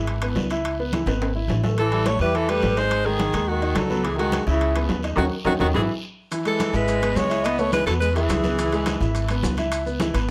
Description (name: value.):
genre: Afro-Cuban jazz.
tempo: 212 BPM.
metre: 4/4.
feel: straight.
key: C# minor.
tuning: A4 = 440 Hz.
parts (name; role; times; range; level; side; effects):
clear alto saxophone; melody; 0.0-9.3 s; E4 to D#5; -27 LUFS; equal; slapback echo.
warm viola; second line; 0.0-9.2 s; C#3 to B3; -30 LUFS; equal; none.
warm concert grand piano; accompaniment; 0.0-10.3 s; D#3 to E5; -30 LUFS; equal; none.
upright bass; bass; 0.0-10.3 s; G#1 to E2; -28 LUFS; equal; none.
congas; percussion; 0.1-10.3 s; none; -32 LUFS; equal; none.
guiro; percussion; 0.1-10.3 s; none; -42 LUFS; equal; none.
timbales; percussion; 0.1-10.3 s; none; -34 LUFS; equal; none.
maracas; percussion; 6.3-10.3 s; none; -43 LUFS; equal; none.
room: light reverb.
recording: close, detailed microphones.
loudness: -22 LUFS.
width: mono.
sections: 0.0-6.3 A section; 6.3-10.3 A section.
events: drum fill 1.1-1.8, 5.7-6.3; band accent 5.2-6.3.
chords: 0.0 C#m7; 1.8 A5; 2.9 G#5; 4.0 C#m9; 5.2 D#m7; 5.7 Eadd9/G#; 6.3 C#m7.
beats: 0.07 0.36 | 0.64 0.93 1.21 1.49 | 1.77 2.06 2.34 2.62 | 2.91 3.19 3.48 3.76 | 4.04 4.33 4.61 4.89 | 5.18 5.46 5.74 6.03 | 6.31 6.59 6.88 7.16 | 7.45 7.73 8.01 8.30 | 8.58 8.87 9.15 9.43 | 9.72 10.00 10.29.